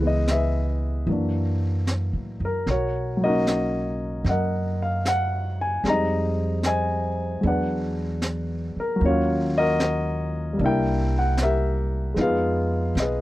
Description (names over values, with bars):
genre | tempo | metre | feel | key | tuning
jazz ballad | 76 BPM | 4/4 | swing 68% on 8ths | unclear | A4 = 440 Hz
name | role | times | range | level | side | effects
dark grand piano | accompaniment | 0.0-13.2 s | Fb3 to Bb5 | -24 LUFS | left 1 dB | none
upright bass | bass | 0.0-13.2 s | B1 to A2 | -25 LUFS | equal | none
jazz brush drum kit | drums | 0.3-13.2 s | brushed snare drum, hi-hat, snare drum | -31 LUFS | equal | none
room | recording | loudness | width
little or no reverb | dry, close 1970s-style studio recording | -21 LUFS | side -16 dB against mid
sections
0.0-13.2 A section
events
none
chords
0.0 Dbm7; 1.1 Gb7alt; 2.7 Bmaj9; 5.8 Fm7; 7.4 E9; 9.0 Ebm9; 10.6 C7; 12.2 Fm7b5